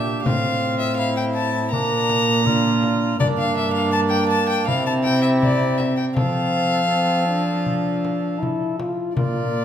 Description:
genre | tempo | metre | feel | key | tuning
classical, renaissance-style consort dance | 81 BPM | 4/4 | straight | F major | A4 = 437 Hz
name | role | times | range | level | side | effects
rich violin | melody | 0.0-9.6 s | D5 to Bb5 | -23 LUFS | left 3 dB | none
mellow cor anglais | second line | 0.0-9.6 s | D4 to A4 | -27 LUFS | right 4 dB | none
warm trombone | accompaniment | 0.0-9.6 s | Bb3 to F4 | -24 LUFS | left 2 dB | none
dark cello | bass | 0.0-9.6 s | G2 to F3 | -23 LUFS | right 2 dB | none
frame drum | percussion | 0.3-9.5 s | none | -26 LUFS | left 2 dB | none
room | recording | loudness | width
wet recital hall reverb, RT60 1.6 s | none | -18 LUFS | side -9 dB against mid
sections
0.0-9.2 A section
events
none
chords
0.3 F/A; 1.7 Bb; 3.2 Gm; 4.7 C; 6.2 F

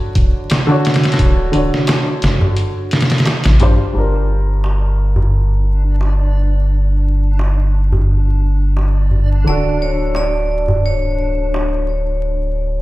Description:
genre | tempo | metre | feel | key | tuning
trip hop | 87 BPM | 4/4 | swing 54% on 16ths | unclear | A4 = 439 Hz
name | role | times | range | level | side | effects
dark upright piano | accompaniment | 0.0-12.8 s | D3 to C#5 | -20 LUFS | equal | harmonic tremolo, vintage 12-bit sampler grit, tape echo
soft dub sub bass | bass | 0.2-12.8 s | D1 to A1 | -15 LUFS | equal | none
trip hop sampler-style drum kit | drums | 0.2-3.8 s | hi-hat, kick drum, snare drum | -15 LUFS | equal | none
darbuka | percussion | 0.5-11.7 s | none | -21 LUFS | equal | none
backwards swelling texture | texture | 5.3-12.8 s | D4 | -28 LUFS | right 1 dB | built-in reverb
vibraphone with hard mallets | melody | 9.5-12.8 s | C#5 to D5 | -20 LUFS | equal | tape echo
room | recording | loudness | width
little or no reverb | played on a big sound system in a bare room, stone room reverb, vinyl crackle | -13 LUFS | side -18 dB against mid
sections
0.0-4.0 A section; 4.0-12.8 B section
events
none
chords
0.0 Dmaj7; 4.0 Gm7; 9.5 Dmaj7

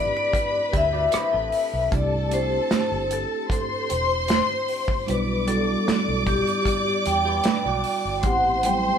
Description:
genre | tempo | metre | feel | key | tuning
lush 1970s-style soul | 76 BPM | 4/4 | straight | unclear | A4 = 440 Hz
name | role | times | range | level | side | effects
vibraphone with medium mallets | melody | 0.0-9.0 s | G4 to G5 | -24 LUFS | left 1 dB | none
warm studio violin section | second line | 0.0-9.0 s | A4 to D6 | -27 LUFS | left 2 dB | none
mellow tine electric piano | accompaniment | 0.0-9.0 s | F#3 to G4 | -30 LUFS | left 1 dB | medium stereo tremolo
vintage muted fingered electric bass | bass | 0.0-8.9 s | E1 to E2 | -29 LUFS | right 1 dB | none
modern studio drum kit | drums | 0.3-8.8 s | hi-hat, kick drum, rim click, snare drum | -27 LUFS | right 2 dB | none
electric guitar through a small old amp | riff | 0.7-1.9, 7.3-8.2 s | B3 to E5 | -32 LUFS | right 5 dB | none
room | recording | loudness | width
moderate studio ambience, RT60 0.5 s | band playing live in one room | -20 LUFS | side -8 dB against mid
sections
0.0-9.0 A section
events
none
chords
0.0 D7sus4; 1.9 C69; 5.1 Em7/B; 8.2 Am7

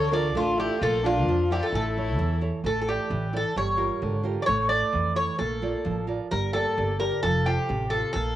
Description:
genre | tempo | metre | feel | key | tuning
greek folk, Greek bouzouki band | 131 BPM | 2/4 | straight | A phrygian dominant | A4 = 440 Hz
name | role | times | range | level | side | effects
Greek bouzouki | melody | 0.0-8.4 s | F4 to D5 | -26 LUFS | left 1 dB | cassette tape
warm violin | second line | 0.0-2.4 s | D4 to Bb4 | -31 LUFS | left 6 dB | cassette tape
nylon-string guitar | accompaniment | 0.0-8.4 s | C3 to E5 | -30 LUFS | right 5 dB | cassette tape
upright bass | bass | 0.0-8.4 s | F1 to F2 | -29 LUFS | equal | none
room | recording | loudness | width
moderate spring reverb, RT60 1.2 s | home recording on cassette | -23 LUFS | side -13 dB against mid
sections
0.0-2.6 A section; 2.6-8.4 B section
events
none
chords
0.0 Dm; 0.8 Bb; 1.7 A; 2.6 Asus4; 3.6 Gm7; 4.5 A; 5.4 Bb; 6.3 Gm; 7.2 F

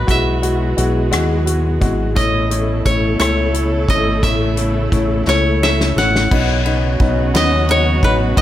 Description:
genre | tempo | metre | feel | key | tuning
six-eight pop ballad | 58 BPM (dotted quarters) | 6/8 | straight | unclear | A4 = 440 Hz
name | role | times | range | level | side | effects
koto | melody | 0.0-8.4 s | B4 to F#5 | -19 LUFS | equal | none
warm studio string section | sustained chords | 0.0-8.4 s | B2 to A4 | -24 LUFS | right 2 dB | none
fingered electric bass | bass | 0.0-8.4 s | G#1 to D#2 | -18 LUFS | equal | none
clear upright piano | accompaniment | 0.1-8.4 s | G#3 to F#4 | -20 LUFS | left 3 dB | none
natural country drum kit | drums | 0.1-8.4 s | crash cymbal, hi-hat, kick drum, ride cymbal, rim click, snare drum | -20 LUFS | equal | none
room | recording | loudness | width
light reverb | none | -13 LUFS | side -12 dB against mid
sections
0.0-6.3 A section; 6.3-8.4 B section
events
drum fill 5.3-6.3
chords
0.1 Eadd9/B; 2.2 A; 6.3 Badd9

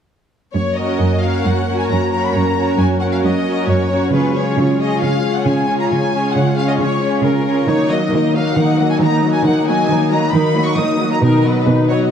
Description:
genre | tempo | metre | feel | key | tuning
cinematic, heroic adventure film score | 135 BPM | 4/4 | straight | F# major | A4 = 440 Hz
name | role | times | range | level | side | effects
clear symphonic violin section | melody | 0.5-12.0 s | A#4 to D#6 | -22 LUFS | left 2 dB | none
dark French horn section | sustained chords | 0.5-12.1 s | F#3 to E#4 | -21 LUFS | left 5 dB | none
rich studio cello section | bass | 0.5-12.0 s | F#2 to D#3 | -18 LUFS | right 3 dB | none
clear symphonic violin section | second line | 0.8-12.1 s | D#4 to D#5 | -24 LUFS | left 3 dB | none
rich symphonic viola section | accompaniment | 0.8-12.1 s | D#3 to F#4 | -20 LUFS | right 1 dB | none
room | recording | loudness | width
wet scoring stage reverb, RT60 1.6 s | dark, warm production | -13 LUFS | side -8 dB against mid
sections
0.5-12.1 A section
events
none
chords
0.5 F#; 4.1 C#; 7.7 D#m; 11.2 B

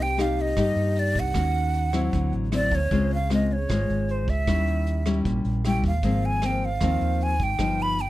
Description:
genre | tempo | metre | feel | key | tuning
bossa nova | 154 BPM | 4/4 | straight | unclear | A4 = 439 Hz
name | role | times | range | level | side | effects
breathy hollow jazz flute | melody | 0.0-8.1 s | C5 to B5 | -27 LUFS | right 2 dB | none
nylon-string guitar | accompaniment | 0.0-8.1 s | G2 to G4 | -26 LUFS | left 3 dB | none
fingered electric bass | bass | 0.0-8.1 s | G1 to G2 | -26 LUFS | right 1 dB | none
vintage brush drum kit | drums | 0.2-8.1 s | hi-hat, kick drum, rim click | -31 LUFS | right 1 dB | none
room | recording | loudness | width
little or no reverb | close, detailed microphones | -22 LUFS | side -16 dB against mid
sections
0.0-8.1 A section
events
none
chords
0.0 Cm7; 1.3 Ebm7; 2.1 D9; 2.9 Dbmaj7; 4.5 Eb7b9; 6.0 Ab69; 7.6 G7b13

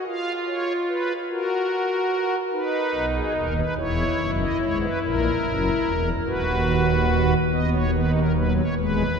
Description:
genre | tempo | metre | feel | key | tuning
classical, baroque-style 4-part fugue for pipe organ | 48 BPM (dotted quarters) | 6/8 | straight | B major | A4 = 440 Hz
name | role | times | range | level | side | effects
pipe organ, strings celeste | solo | 0.0-9.2 s | D#1 to E#5 | -21 LUFS | equal | none
room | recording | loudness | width
wet cathedral reverb, RT60 4.9 s | heard from further back in the room | -21 LUFS | side -6 dB against mid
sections
0.0-7.5 A section; 7.5-9.2 B section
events
none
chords
0.1 C#7/E#; 1.3 F#; 2.5 B; 3.8 C#m7/E; 5.0 F#7; 6.3 B/D#

